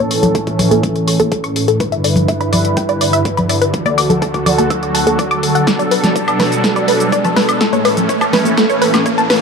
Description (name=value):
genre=progressive house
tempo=124 BPM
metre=4/4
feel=straight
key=unclear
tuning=A4 = 440 Hz
part: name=filtered supersaw swell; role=sustained chords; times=0.0-9.4 s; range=D2 to B4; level=-16 LUFS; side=right 1 dB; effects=sidechain pumping
part: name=wide unison pluck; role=arpeggios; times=0.0-9.4 s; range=A4 to E6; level=-17 LUFS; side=moving between left 6 dB and right 7 dB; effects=auto-pan, sidechain pumping, tape echo
part: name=riser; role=sound effects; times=1.4-9.4 s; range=none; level=-22 LUFS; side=right 1 dB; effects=none
part: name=deep house drum kit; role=drums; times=0.1-9.4 s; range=hi-hat, shaker, snare drum, woodblock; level=-19 LUFS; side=equal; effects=overdrive
part: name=congas and woodblock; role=percussion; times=0.2-9.4 s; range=none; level=-20 LUFS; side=left 2 dB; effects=sidechain pumping on perc
part: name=electronic kick drum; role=drums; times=0.3-9.2 s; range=none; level=-22 LUFS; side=equal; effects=overdrive, high-pass filter on kick, high-pass filter on room
room=light reverb, digital ambience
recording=dark, warm production, high-pass filter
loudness=-12 LUFS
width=side -5 dB against mid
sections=0.0-9.4 A section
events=build-up 0.0-9.4; filter sweep on synth pluck 0.0-9.4; riser 1.4-9.4; drum fill 5.7-9.4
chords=0.0 A; 1.8 G6; 3.7 D; 5.7 Bm7; 7.6 A